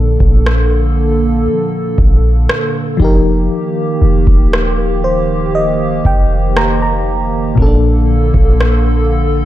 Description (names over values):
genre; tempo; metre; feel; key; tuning
contemporary R&B; 59 BPM; 4/4; straight; Bb major; A4 = 440 Hz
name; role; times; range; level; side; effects
FM electric piano with auto-pan; accompaniment; 0.0-9.4 s; Bb2 to Bb5; -17 LUFS; left 2 dB; none
hollow soft pad; sustained chords; 0.0-9.4 s; D3 to A4; -18 LUFS; right 2 dB; chorus
clean 808-style bass; bass; 0.0-9.4 s; Eb1 to F3; -14 LUFS; equal; none
booming analog drum machine; drums; 0.2-8.8 s; kick drum, rim click; -13 LUFS; equal; none
room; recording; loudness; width
little or no reverb; dark, warm production; -10 LUFS; side -13 dB against mid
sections
0.0-9.4 A section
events
FM electric piano fill 4.5-7.6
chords
0.0 Bbmaj7; 3.0 F9sus4; 7.6 Bbmaj7